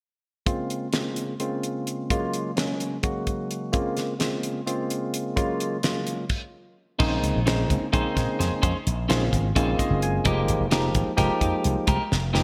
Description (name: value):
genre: electric jazz fusion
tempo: 258 BPM (eighths)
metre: 7/8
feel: straight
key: Bb minor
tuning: A4 = 443 Hz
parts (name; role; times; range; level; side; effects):
- barky tine electric piano; accompaniment; 0.5-12.4 s; Db3 to Ab5; -29 LUFS; equal; none
- damped 70s drum kit; drums; 0.5-12.4 s; crash cymbal, hi-hat, kick drum, snare drum; -29 LUFS; equal; gated reverb
- clean electric guitar; stabs; 7.0-12.4 s; Ab3 to C5; -32 LUFS; equal; subtle chorus
- slap bass with an envelope filter; bass; 7.0-12.4 s; F1 to Bb2; -27 LUFS; equal; none
room: moderate lush hall reverb, RT60 1.7 s, small room ambience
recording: bright 1980s-style digital production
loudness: -25 LUFS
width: mono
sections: 0.5-7.0 A section; 7.0-12.4 B section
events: stop 6.3-7.0; tine electric piano fill 9.6-10.3; drum fill 12.1-12.4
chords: 0.5 Bbm9; 2.1 Gbmaj9; 3.7 Bbm9; 5.4 Gbmaj9; 7.0 Bbm11; 10.3 Fm11